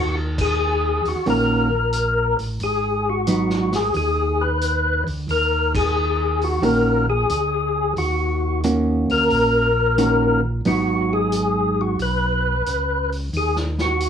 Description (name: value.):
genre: soul jazz organ trio.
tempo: 89 BPM.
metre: 4/4.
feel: swing 68% on 8ths.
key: Eb minor.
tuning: A4 = 440 Hz.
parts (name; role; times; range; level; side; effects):
percussive tonewheel organ; melody; 0.0-14.1 s; Gb4 to Cb5; -20 LUFS; left 2 dB; slow rotary speaker, overdrive, chorus vibrato.
tonewheel organ; bass; 0.0-14.1 s; Ab1 to Eb2; -24 LUFS; equal; slow rotary speaker.
vintage drum kit; drums; 0.4-14.1 s; crash cymbal, hi-hat, kick drum, snare drum; -31 LUFS; equal; none.
hollow-body jazz guitar; accompaniment; 1.3-12.5 s; Eb3 to Gb4; -21 LUFS; right 2 dB; none.
room: moderate studio reverb, RT60 0.6 s.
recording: band playing live in one room, small room ambience.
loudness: -18 LUFS.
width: side -8 dB against mid.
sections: 0.0-14.1 A section.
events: band accent 0.3-0.6, 5.6-6.0.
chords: 0.0 Ebm7; 2.6 Abm7; 5.3 Ebm7; 10.7 Abm7; 13.3 Ebm.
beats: 0.59 1.26 1.94 | 2.61 3.28 3.95 4.62 | 5.29 5.96 6.63 7.30 | 7.97 8.64 9.31 9.98 | 10.66 11.33 12.00 12.67 | 13.34 14.01.